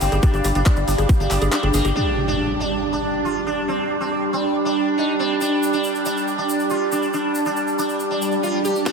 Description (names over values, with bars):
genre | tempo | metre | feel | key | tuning
psychedelic trance | 139 BPM | 4/4 | straight | unclear | A4 = 440 Hz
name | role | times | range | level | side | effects
sitar | melody | 0.0-8.9 s | Bb3 to G4 | -24 LUFS | equal | phaser, sidechain pumping, diffuse ambient delay
bubbling stepped-filter texture | sustained chords | 0.0-8.9 s | G3 to G4 | -23 LUFS | right 2 dB | chorus, built-in reverb, sidechain pumping
woody wave-folded pluck | riff | 0.0-1.9, 8.9 s | G4 to G5 | -30 LUFS | moving between left 5 dB and right 4 dB | none
tight sequencer bass | bass | 0.0-1.9 s | G1 | -21 LUFS | equal | none
garage drum kit | drums | 0.0-1.9, 8.9 s | handclaps, hi-hat, snare drum | -30 LUFS | equal | overdrive, high-pass filter on hats, low-pass filter on hats, studio reverb, high-pass filter on snare, low-pass filter on snare
tube shaker | percussion | 0.0-1.9, 5.4-8.9 s | none | -34 LUFS | left 1 dB | none
warbly tape-like pad | texture | 0.0-8.9 s | G4 to G5 | -28 LUFS | right 4 dB | chorus, built-in reverb, phaser, sidechain pumping
electronic kick drum | drums | 0.2-1.2, 8.9 s | none | -15 LUFS | equal | overdrive, high-pass filter on kick, studio reverb
impact, swell and riser | sound effects | 2.0-3.7, 8.1-8.9 s | none | -28 LUFS | left 1 dB | none
room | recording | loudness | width
moderate huge ambient reverb, RT60 7.8 s | dreamy mix soaked in reverb | -18 LUFS | side -5 dB against mid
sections
0.0-2.0 A section; 2.0-8.9 B section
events
kick drops out 1.5-2.0; impact 2.0-3.7; swell 8.1-8.9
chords
0.0 G5